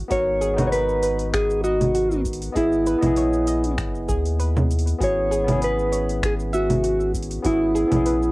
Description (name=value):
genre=sunset chillout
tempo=98 BPM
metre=4/4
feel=swing 54% on 16ths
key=unclear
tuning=A4 = 439 Hz
part: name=warm sub bass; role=bass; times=0.0-8.3 s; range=F#1 to D#2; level=-26 LUFS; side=equal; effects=none
part: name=mellow electric guitar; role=melody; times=0.1-8.3 s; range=E4 to C#5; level=-21 LUFS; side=equal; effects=cassette tape, analog delay
part: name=bright tine electric piano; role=accompaniment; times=0.1-8.3 s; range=B3 to D#5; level=-28 LUFS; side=equal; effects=auto-pan, vintage 12-bit sampler grit, cassette tape
part: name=soft round pluck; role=arpeggios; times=0.1-8.3 s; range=F#4 to E5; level=-29 LUFS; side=right 2 dB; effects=chorus, cassette tape, analog delay
part: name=electronic kick drum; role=drums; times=0.1-7.6 s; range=none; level=-28 LUFS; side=equal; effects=cassette tape
part: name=smooth R&B drum kit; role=drums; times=0.1-8.3 s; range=congas, finger snaps, hi-hat, shaker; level=-26 LUFS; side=right 1 dB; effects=overdrive, cassette tape
room=light reverb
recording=home recording on cassette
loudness=-19 LUFS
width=side -21 dB against mid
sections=0.0-8.3 A section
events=none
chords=0.0 G#m9; 2.6 C#m9/G#; 5.0 F#9sus4/G#